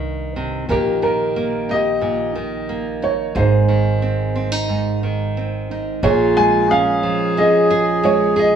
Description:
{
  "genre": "acoustic folk-pop ballad",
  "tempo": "90 BPM",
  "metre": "4/4",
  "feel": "straight",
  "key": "Bb dorian",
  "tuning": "A4 = 441 Hz",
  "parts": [
    { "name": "nylon-string guitar", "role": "accompaniment", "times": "0.0-8.6 s", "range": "G2 to Ab4", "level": "-20 LUFS", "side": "right 4 dB", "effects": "none" },
    { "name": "upright bass", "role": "bass", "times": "0.0-8.6 s", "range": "Ab1 to C2", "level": "-25 LUFS", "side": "right 1 dB", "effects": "none" },
    { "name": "warm upright piano", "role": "melody", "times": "0.7-8.6 s", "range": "Eb4 to Ab5", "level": "-18 LUFS", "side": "equal", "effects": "none" },
    { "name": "warm clarinet", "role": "second line", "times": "6.0-8.6 s", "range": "F4 to Ab4", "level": "-20 LUFS", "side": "left 3 dB", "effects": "none" }
  ],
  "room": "light reverb",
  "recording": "small room ambience",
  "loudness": "-16 LUFS",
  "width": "side -8 dB against mid",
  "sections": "0.0-6.0 A section; 6.0-8.6 B section",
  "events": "none",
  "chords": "0.0 Cm; 0.7 Eb/Bb; 3.4 Ab; 6.0 Bbm7"
}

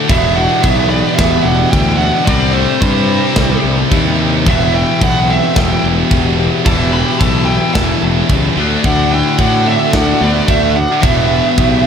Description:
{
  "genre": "heavy metal",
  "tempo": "110 BPM",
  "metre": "4/4",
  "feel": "straight",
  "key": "E minor",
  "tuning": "A4 = 445 Hz",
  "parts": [
    { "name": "dark studio string section", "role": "sustained chords", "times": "0.0-11.9 s", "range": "C3 to G4", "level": "-24 LUFS", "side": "left 1 dB", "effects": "none" },
    { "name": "heavy high-gain guitar", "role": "riff", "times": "0.0-11.9 s", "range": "E2 to D4", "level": "-20 LUFS", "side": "right 12 dB", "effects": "distortion" },
    { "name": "high-gain distorted guitar", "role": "riff", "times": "0.0-11.9 s", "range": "E2 to D4", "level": "-17 LUFS", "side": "left 9 dB", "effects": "distortion, slapback echo" },
    { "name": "high-gain lead guitar", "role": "melody", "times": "0.1-11.9 s", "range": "C5 to B5", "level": "-18 LUFS", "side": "right 2 dB", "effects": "distortion" },
    { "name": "smooth overdriven lead guitar", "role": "second line", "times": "0.1-11.9 s", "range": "G3 to G4", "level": "-23 LUFS", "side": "right 1 dB", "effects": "slapback echo, ping-pong delay" },
    { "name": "fuzz picked electric bass", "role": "bass", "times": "0.1-11.9 s", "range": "E1 to A2", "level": "-17 LUFS", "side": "equal", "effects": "overdrive" },
    { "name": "tight metal drum kit", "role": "drums", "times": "0.1-11.7 s", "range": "crash cymbal, kick drum, snare drum", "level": "-17 LUFS", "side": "equal", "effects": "none" }
  ],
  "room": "moderate lush hall reverb, RT60 1.8 s, small room ambience",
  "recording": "big arena sound",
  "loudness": "-10 LUFS",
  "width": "side -7 dB against mid",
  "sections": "0.0-11.9 A section",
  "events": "half time 0.0-11.9",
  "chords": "0.1 Em; 2.3 C; 4.5 Em; 8.6 D; 11.0 Em"
}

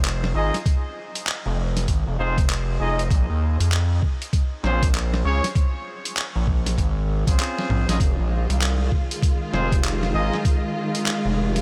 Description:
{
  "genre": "glitch hop",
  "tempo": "98 BPM",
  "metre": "4/4",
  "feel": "swing 62% on 16ths",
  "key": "Bb minor",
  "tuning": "A4 = 439 Hz",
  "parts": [
    { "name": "gritty driven synth bass", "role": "bass", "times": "0.0-11.6 s", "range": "F1 to F2", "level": "-25 LUFS", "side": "equal", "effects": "distortion, overdrive" },
    { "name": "boom bap sampler-style drum kit", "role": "drums", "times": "0.0-11.6 s", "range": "handclaps, hi-hat, snare drum, toms", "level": "-32 LUFS", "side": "equal", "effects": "none" },
    { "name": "clear horn section", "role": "stabs", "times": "0.3-10.4 s", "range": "C4 to Eb5", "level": "-32 LUFS", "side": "equal", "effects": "vintage 12-bit sampler grit, sidechain pumping, low-pass filter, diffuse ambient delay" },
    { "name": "electronic kick drum", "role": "drums", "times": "0.7-10.6 s", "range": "none", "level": "-23 LUFS", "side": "equal", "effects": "none" },
    { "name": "dark symphonic string section", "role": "sustained chords", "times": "8.0-11.6 s", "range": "Eb3 to F4", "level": "-29 LUFS", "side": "equal", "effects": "sidechain pumping" }
  ],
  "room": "light reverb, digital ambience",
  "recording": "none",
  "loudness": "-22 LUFS",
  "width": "mono",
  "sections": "0.0-11.6 A section",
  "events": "drum fill 7.5-8.0",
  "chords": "0.0 Fm7; 3.1 Bbm7; 8.0 Fm7"
}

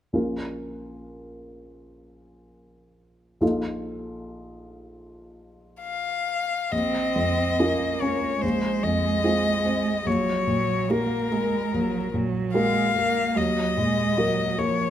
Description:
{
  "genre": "classical, slow romantic movement for piano trio",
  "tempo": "73 BPM",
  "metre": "4/4",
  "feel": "uneven beats, rubato",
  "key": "Bb minor",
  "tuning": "A4 = 440 Hz",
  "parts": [
    { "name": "warm baby grand piano", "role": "accompaniment", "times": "0.1-14.9 s", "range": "Bb1 to Bb4", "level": "-26 LUFS", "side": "equal", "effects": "none" },
    { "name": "clear violin", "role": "melody", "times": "5.8-14.9 s", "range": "Bb4 to F5", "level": "-26 LUFS", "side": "left 5 dB", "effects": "none" },
    { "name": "rich cello", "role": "second line", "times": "6.7-14.9 s", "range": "F3 to C4", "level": "-27 LUFS", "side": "right 6 dB", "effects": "none" }
  ],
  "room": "moderate large studio reverb, RT60 1.4 s",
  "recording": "none",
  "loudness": "-22 LUFS",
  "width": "side -10 dB against mid",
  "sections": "0.1-6.7 A section; 6.7-14.9 B section",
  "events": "none",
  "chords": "0.1 Bbm; 3.4 F7/Bb; 6.7 Bbm; 8.4 Fm/Bb; 10.1 Gb/Bb; 13.4 Ebm"
}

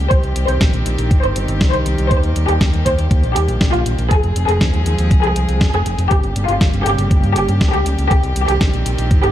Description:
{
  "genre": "italo disco",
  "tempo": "120 BPM",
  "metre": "4/4",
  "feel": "straight",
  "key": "F minor",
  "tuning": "A4 = 440 Hz",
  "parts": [
    { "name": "rich chamber string section", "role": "sustained chords", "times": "0.0-9.3 s", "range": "Db3 to Ab4", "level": "-24 LUFS", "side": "equal", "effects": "none" },
    { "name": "overdriven fingered electric bass", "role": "bass", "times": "0.0-9.3 s", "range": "F1 to G2", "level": "-18 LUFS", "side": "equal", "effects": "none" },
    { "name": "dark studio violin section", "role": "melody", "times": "0.1-9.3 s", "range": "F4 to C5", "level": "-20 LUFS", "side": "equal", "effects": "ping-pong delay" },
    { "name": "clean 12-bit digital drum machine", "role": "drums", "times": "0.1-9.3 s", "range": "hi-hat, snare drum", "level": "-23 LUFS", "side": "equal", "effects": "studio reverb" },
    { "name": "electronic kick drum", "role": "drums", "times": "0.1-9.2 s", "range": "none", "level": "-15 LUFS", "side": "equal", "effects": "studio reverb" }
  ],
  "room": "light reverb, digital ambience",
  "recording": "dark, warm production",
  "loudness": "-13 LUFS",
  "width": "side -12 dB against mid",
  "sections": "0.0-9.3 A section",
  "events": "none",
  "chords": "0.1 Cm; 2.1 Eb; 4.1 Fm; 6.1 Gdim; 8.1 Cm"
}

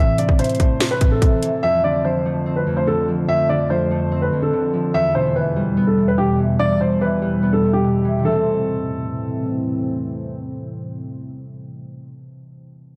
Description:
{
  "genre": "hip hop, trap",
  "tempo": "145 BPM",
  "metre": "4/4",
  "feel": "half-time",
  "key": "A minor",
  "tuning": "A4 = 440 Hz",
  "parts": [
    { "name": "dark grand piano", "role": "melody", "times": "0.0-9.5 s", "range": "G4 to E5", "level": "-23 LUFS", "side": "equal", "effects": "low-pass filter, delay" },
    { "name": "concert harp", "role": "accompaniment", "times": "0.0-12.1 s", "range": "E2 to C4", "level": "-24 LUFS", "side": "equal", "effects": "low-pass filter" },
    { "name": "deep dark ambient pad", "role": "sustained chords", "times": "0.0-12.0 s", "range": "E2 to C4", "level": "-28 LUFS", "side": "equal", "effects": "chorus, built-in reverb" },
    { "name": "trap drum kit", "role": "drums", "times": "0.2-1.5 s", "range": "finger snaps, hi-hat, kick drum, snare drum", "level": "-19 LUFS", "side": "equal", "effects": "none" }
  ],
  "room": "moderate lush hall reverb, RT60 1.9 s",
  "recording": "dark, warm production",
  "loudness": "-19 LUFS",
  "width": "mono",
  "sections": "0.0-8.3 A section; 8.3-11.6 B section",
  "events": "none",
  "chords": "0.0 Am; 1.6 F6; 4.9 Em; 8.3 Am"
}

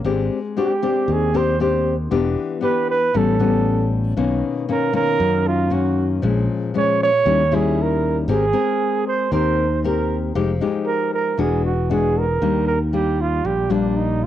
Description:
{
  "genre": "bossa nova",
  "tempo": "116 BPM",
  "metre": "4/4",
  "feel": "straight",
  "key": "unclear",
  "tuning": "A4 = 440 Hz",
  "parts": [
    { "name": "nylon-string guitar", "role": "accompaniment", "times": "0.0-14.3 s", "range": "F#2 to Bb4", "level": "-21 LUFS", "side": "left 6 dB", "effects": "cassette tape" },
    { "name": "fingered electric bass", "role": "bass", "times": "0.0-14.3 s", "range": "E1 to F#2", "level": "-22 LUFS", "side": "equal", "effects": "none" },
    { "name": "breathy flugelhorn", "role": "melody", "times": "0.6-14.3 s", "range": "D4 to Db5", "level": "-20 LUFS", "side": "right 5 dB", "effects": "cassette tape" }
  ],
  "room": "light reverb, small room ambience",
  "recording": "home recording on cassette, nothing above 10.4 kHz",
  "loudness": "-17 LUFS",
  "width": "side -11 dB against mid",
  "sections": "0.0-12.4 A section; 12.4-14.3 B section",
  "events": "none",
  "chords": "0.0 Abmaj7#11; 2.1 Em7; 3.1 A9; 4.2 Bmaj9; 6.2 Bbm7; 7.3 Eb7b9; 8.3 Abmaj9; 10.4 Fm9; 11.4 E9; 12.4 Ebmaj7"
}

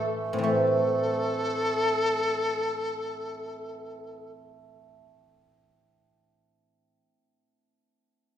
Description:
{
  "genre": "chinese traditional, Chinese chamber ensemble",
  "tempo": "free time",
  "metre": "none",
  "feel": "none",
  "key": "A yu mode",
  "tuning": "A4 = 439 Hz",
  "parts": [
    { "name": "large dizi", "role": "melody", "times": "0.0-4.3 s", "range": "A4", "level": "-29 LUFS", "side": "left 1 dB", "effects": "none" },
    { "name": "hammered dulcimer", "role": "second line", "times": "0.0-5.0 s", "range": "E3 to C4", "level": "-30 LUFS", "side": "right 2 dB", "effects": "none" },
    { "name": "guzheng", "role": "accompaniment", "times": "0.0-7.0 s", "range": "A2 to A3", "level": "-31 LUFS", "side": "left 2 dB", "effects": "none" }
  ],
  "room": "wet recital hall reverb, RT60 1.8 s",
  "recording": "heard from further back in the room",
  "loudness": "-24 LUFS",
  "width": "side -10 dB against mid",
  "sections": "0.4-3.6 A section",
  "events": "none",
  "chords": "none"
}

